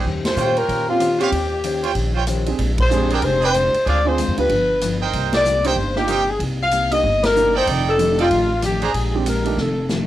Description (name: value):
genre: jazz, big band swing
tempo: 189 BPM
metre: 4/4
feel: swing 62% on 8ths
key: unclear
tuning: A4 = 440 Hz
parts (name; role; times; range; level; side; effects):
- fingerpicked steel-string acoustic guitar; accompaniment; 0.0-10.1 s; F2 to C5; -28 LUFS; left 5 dB; cassette tape
- brilliant trumpet section; stabs; 0.0-8.9 s; D4 to Bb5; -23 LUFS; right 8 dB; cassette tape
- upright bass; bass; 0.0-10.1 s; F1 to Bb2; -23 LUFS; equal; none
- swinging big-band drum kit; drums; 0.1-10.0 s; hi-hat, kick drum, ride cymbal, rim click, snare drum; -27 LUFS; right 1 dB; cassette tape
- dark saxophone section; melody; 0.3-9.9 s; F4 to F5; -19 LUFS; left 2 dB; cassette tape
- warm baby grand piano; accompaniment; 0.9-9.6 s; Ab3 to Ab4; -25 LUFS; right 8 dB; cassette tape
room: moderate studio reverb, RT60 0.6 s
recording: home recording on cassette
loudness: -16 LUFS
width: side -13 dB against mid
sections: 0.0-10.1 A section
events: band accent 0.2, 2.7, 5.3, 7.2; drum fill 9.6-10.1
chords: 0.0 Eb13; 2.6 Bb13; 3.9 Dm7b5; 4.5 G7; 5.1 Cm7; 7.7 F13; 8.9 Bb13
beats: | 0.05 0.36 0.68 1.00 | 1.32 1.64 1.95 2.27 | 2.59 2.91 3.22 3.54 | 3.86 4.18 4.49 4.81 | 5.13 5.45 5.76 6.08 | 6.40 6.72 7.03 7.35 | 7.67 7.99 8.30 8.62 | 8.94 9.26 9.57 9.89